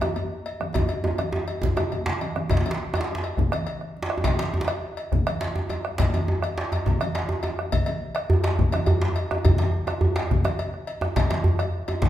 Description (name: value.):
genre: west african traditional, West African drum ensemble.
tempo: 138 BPM (dotted quarters).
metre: 12/8.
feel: straight.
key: none.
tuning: none.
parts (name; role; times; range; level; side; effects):
bombo; percussion; 0.0-12.1 s; none; -29 LUFS; equal; none.
congas; percussion; 0.0-12.1 s; none; -32 LUFS; right 3 dB; none.
cowbell; percussion; 0.0-12.0 s; none; -33 LUFS; left 3 dB; none.
djembe; percussion; 0.0-12.1 s; none; -30 LUFS; left 3 dB; none.
djembe; percussion; 0.0-12.1 s; none; -24 LUFS; right 1 dB; none.
room: wet large studio reverb, RT60 1.3 s.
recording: band playing live in one room, faint mains hum.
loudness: -22 LUFS.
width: side -12 dB against mid.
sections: 0.0-2.5 A section; 2.5-12.1 B section.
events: drum fill 0.8-2.5.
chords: none.